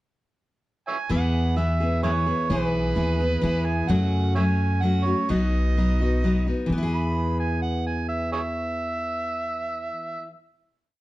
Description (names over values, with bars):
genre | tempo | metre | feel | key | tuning
country | 128 BPM | 3/4 | straight | E major | A4 = 442 Hz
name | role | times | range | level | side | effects
overdriven harmonica | second line | 0.9-10.3 s | E4 to B5 | -28 LUFS | right 3 dB | none
picked steel-string acoustic guitar | accompaniment | 1.1-10.3 s | F#2 to G#4 | -25 LUFS | left 1 dB | none
upright bass | bass | 1.1-9.9 s | B1 to F#2 | -26 LUFS | equal | none
room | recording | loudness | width
light reverb | dark, warm production | -22 LUFS | side -17 dB against mid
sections
0.0-1.1 pickup bar; 1.1-6.7 interlude; 6.7-9.5 final chord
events
harmonica solo 1.1-6.7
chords
0.0 N.C.; 1.1 E; 3.9 F#m; 5.3 B; 6.7 E